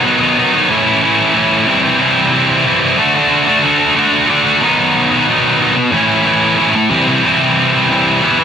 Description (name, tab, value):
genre	rock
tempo	92 BPM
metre	4/4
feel	straight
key	unclear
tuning	A4 = 438 Hz
part	scooped high-gain guitar	solo	0.0-8.4 s	A2 to F#4	-10 LUFS	equal	distortion
room	light reverb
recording	none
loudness	-10 LUFS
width	side -8 dB against mid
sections	0.0-4.6 A section; 4.6-8.4 B section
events	none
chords	0.0 B; 0.7 A; 1.7 C; 3.0 D; 4.6 B; 5.9 A; 6.9 C